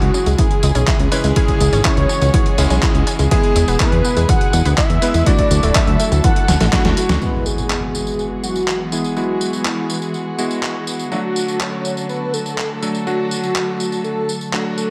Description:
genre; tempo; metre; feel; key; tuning
italo disco; 123 BPM; 4/4; straight; unclear; A4 = 440 Hz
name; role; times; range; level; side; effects
unison lead; melody; 0.0-14.9 s; E4 to F#5; -24 LUFS; equal; delay
dark chamber string section; sustained chords; 0.0-14.9 s; B2 to A4; -28 LUFS; equal; low-pass filter
bright electric grand piano; stabs; 0.0-14.9 s; F#3 to B4; -26 LUFS; equal; low-pass filter
fat analog bass; bass; 0.0-7.2 s; D1 to E2; -18 LUFS; equal; none
dusty soul sampler-style drum kit; drums; 0.0-14.9 s; handclaps, hi-hat, snare drum, tambourine; -25 LUFS; equal; gated reverb
analog pluck; arpeggios; 0.1-7.2 s; E3 to E4; -28 LUFS; equal; chorus, digital delay
electronic kick drum; drums; 0.4-6.8 s; none; -20 LUFS; equal; none
impact; sound effects; 7.2-9.2 s; none; -29 LUFS; equal; none
room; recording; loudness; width
light reverb, digital ambience; none; -17 LUFS; mono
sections
0.0-7.2 A section; 7.2-14.9 B section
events
drum fill 6.5-7.2; band accent 7.1; impact 7.2-9.2; filter sweep on electric grand piano 7.2-14.9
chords
0.0 C#m; 3.3 E; 5.3 Dadd9; 7.2 Eadd9; 11.1 D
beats
0.39 0.87 | 1.36 1.85 2.34 2.83 | 3.31 3.80 4.29 4.78 | 5.26 5.75 6.24 6.73 | 7.21 7.70 8.19 8.68 | 9.17 9.65 10.14 10.63 | 11.12 11.61 12.09 12.58 | 13.07 13.56 14.04 14.53

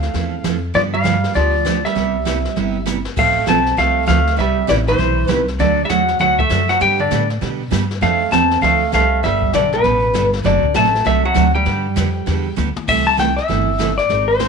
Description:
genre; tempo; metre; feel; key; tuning
country, western swing; 198 BPM; 4/4; swing 62% on 8ths; C major; A4 = 437 Hz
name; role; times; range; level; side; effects
clean lap steel guitar; melody; 0.0-14.5 s; B4 to A5; -17 LUFS; left 3 dB; none
archtop guitar, miked and amplified; second line; 0.0-12.5 s; B2 to C4; -23 LUFS; right 12 dB; none
upright bass; bass; 0.0-14.5 s; F#1 to B2; -21 LUFS; left 1 dB; none
jazz brush drum kit; drums; 0.0-14.5 s; brushed snare drum, crash cymbal, hi-hat, kick drum, snare drum, toms; -27 LUFS; left 6 dB; none
picked steel-string acoustic guitar; accompaniment; 0.1-14.5 s; C3 to Bb4; -22 LUFS; right 13 dB; none
room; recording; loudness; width
light reverb, small room ambience; 1960s-style stereo with parts hard left and right; -14 LUFS; side -5 dB against mid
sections
0.0-3.2 A section; 3.2-12.9 B section; 12.9-14.5 A section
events
drum fill 2.9-3.2, 12.6-12.9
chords
0.0 Fmaj7; 0.7 G7; 2.0 Cmaj7; 3.2 F; 4.4 Cmaj7; 5.6 D; 6.8 G; 8.0 F6; 9.2 Gadd9; 10.4 D7/F#; 11.7 G; 12.9 C6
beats
0.14 0.44 | 0.74 1.05 1.35 1.66 | 1.96 2.26 2.56 2.87 | 3.17 3.47 3.78 4.08 | 4.38 4.68 4.99 5.29 | 5.59 5.90 6.20 6.50 | 6.81 7.11 7.41 7.72 | 8.02 8.32 8.62 8.93 | 9.23 9.54 9.84 10.14 | 10.45 10.75 11.05 11.36 | 11.66 11.96 12.27 12.57 | 12.88 13.18 13.48 13.79 | 14.09 14.40

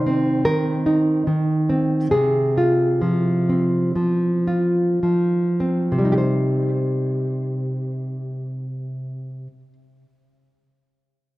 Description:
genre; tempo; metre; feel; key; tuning
romantic piece for solo classical guitar; 49-77 BPM; 4/4; rubato; C minor; A4 = 440 Hz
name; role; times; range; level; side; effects
nylon-string guitar; solo; 0.0-9.7 s; C3 to C5; -18 LUFS; equal; tape echo
room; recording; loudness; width
wet recital hall reverb, RT60 1.5 s; dark, warm production; -18 LUFS; side -18 dB against mid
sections
0.0-6.2 A section; 6.2-10.8 B section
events
slowing down 0.0-6.2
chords
0.0 Cm; 2.1 Fm/C; 6.2 Cm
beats
0.47 1.28 | 2.13 3.02 3.97 5.02 | 6.20 7.33 8.46 9.61

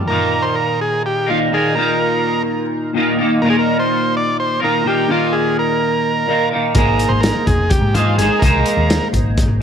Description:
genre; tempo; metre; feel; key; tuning
psychedelic rock; 252 BPM (eighths); 7/8; straight; unclear; A4 = 441 Hz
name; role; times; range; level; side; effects
twangy electric guitar; riff; 0.0-9.6 s; Bb2 to C5; -17 LUFS; equal; flanger, double-tracked left and right
combo organ; melody; 0.1-9.1 s; F4 to D5; -19 LUFS; right 2 dB; tape echo
hollow-body short-scale picked electric bass; bass; 6.7-9.6 s; F1 to Ab2; -17 LUFS; equal; none
vintage drum kit; drums; 6.7-9.5 s; hi-hat, kick drum, snare drum; -18 LUFS; equal; none
congas; percussion; 6.8-9.6 s; none; -27 LUFS; left 2 dB; none
room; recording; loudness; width
studio ambience; none; -14 LUFS; side -8 dB against mid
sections
0.1-9.6 A section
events
none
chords
0.1 Bbsus4; 6.8 Abadd9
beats
| 0.08 0.32 0.56 0.80 1.03 1.27 1.51 | 1.75 1.99 2.23 2.46 2.70 2.94 3.18 | 3.42 3.66 3.90 4.13 4.37 4.61 4.85 | 5.09 5.33 5.56 5.80 6.04 6.28 6.52 | 6.75 6.99 7.23 7.47 7.71 7.95 8.19 | 8.42 8.66 8.90 9.14 9.38 9.61

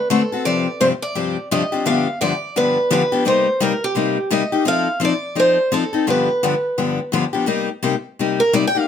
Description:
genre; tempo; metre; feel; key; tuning
jazz; 171 BPM; 4/4; swing 61% on 8ths; C minor; A4 = 439 Hz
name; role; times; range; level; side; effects
picked steel-string acoustic guitar; melody; 0.0-8.9 s; G4 to G5; -19 LUFS; right 1 dB; none
picked steel-string acoustic guitar; accompaniment; 0.1-8.9 s; G2 to A4; -18 LUFS; left 5 dB; none
room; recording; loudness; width
light reverb; none; -16 LUFS; side -8 dB against mid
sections
0.0-7.5 A section; 7.5-8.9 B section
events
steel-string acoustic guitar solo 7.5-8.9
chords
0.5 G7sus4; 1.9 G7; 3.3 Cm7; 4.7 F7; 6.1 G7; 7.5 Cm7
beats
0.10 | 0.45 0.80 1.15 1.50 | 1.85 2.21 2.56 2.91 | 3.26 3.61 3.96 4.31 | 4.66 5.02 5.37 5.72 | 6.07 6.42 6.77 7.12 | 7.48 7.83 8.18 8.53

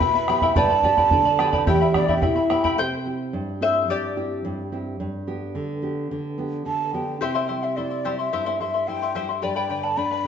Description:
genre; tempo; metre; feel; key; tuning
andean folk, Andean ensemble; 108 BPM; 2/4; straight; unclear; A4 = 438 Hz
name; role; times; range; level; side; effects
mellow hollow quena; melody; 0.0-2.6, 6.7-10.3 s; D5 to B5; -23 LUFS; right 1 dB; none
vibraphone with medium mallets; second line; 0.0-2.6 s; D4 to D5; -24 LUFS; right 2 dB; none
charango; accompaniment; 0.0-4.7, 7.2-10.3 s; E4 to C6; -25 LUFS; left 3 dB; none
nylon-string guitar; accompaniment; 0.0-10.3 s; E2 to G4; -28 LUFS; right 2 dB; none
bombo; percussion; 0.0-2.8 s; none; -25 LUFS; right 1 dB; none
room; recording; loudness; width
wet stone room reverb, RT60 1.2 s; band playing live in one room, nothing above 7.9 kHz; -20 LUFS; side -8 dB against mid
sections
0.0-2.8 A section; 2.8-7.2 B section; 7.2-10.3 C section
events
charango solo 2.8-7.2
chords
0.0 Em; 0.6 G; 1.7 Em; 2.8 C; 5.0 G; 7.2 C; 9.4 G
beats
0.01 | 0.56 1.12 | 1.67 2.23 | 2.78 3.34 | 3.89 4.45 | 5.00 5.56 | 6.11 6.67 | 7.22 7.77 | 8.32 8.88 | 9.43 9.98

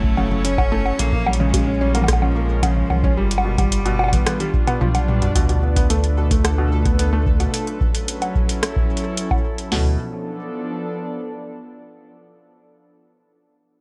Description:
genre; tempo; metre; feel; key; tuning
IDM; 110 BPM; 4/4; straight; D melodic minor; A4 = 440 Hz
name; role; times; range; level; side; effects
bright cello; melody; 0.0-4.8 s; F3 to C#4; -29 LUFS; equal; digital delay
warbly tape-like pad; sustained chords; 0.0-11.9 s; F3 to D5; -30 LUFS; equal; chorus, built-in reverb
felt-muted upright piano; arpeggios; 0.0-10.0 s; B2 to C#4; -28 LUFS; equal; digital delay
warm sub bass; bass; 0.0-10.0 s; F#1 to D2; -23 LUFS; equal; none
booming analog drum machine; drums; 0.0-9.8 s; hi-hat, kick drum, snare drum, toms; -24 LUFS; equal; studio reverb
pulsing gated texture; texture; 0.0-9.7 s; A4 to C#6; -40 LUFS; equal; chorus, built-in reverb, sidechain pumping
booming analog drum machine; drums; 0.2-9.7 s; bongos, hi-hat, rim click, toms; -26 LUFS; equal; studio reverb
room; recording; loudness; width
digital ambience; none; -20 LUFS; mono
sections
0.0-5.4 A section; 5.4-9.7 B section; 9.7-11.9 C section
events
drum fill 4.3-5.4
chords
0.0 F#m7; 1.0 Bbm7; 3.2 G7; 5.4 Dm6; 7.5 F#m7; 9.7 Dm6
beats
0.45 | 0.99 1.54 2.08 2.63 | 3.17 3.72 4.26 4.81 | 5.36 5.90 6.45 6.99 | 7.54 8.08 8.63 9.17 | 9.72 10.26 10.81 11.36

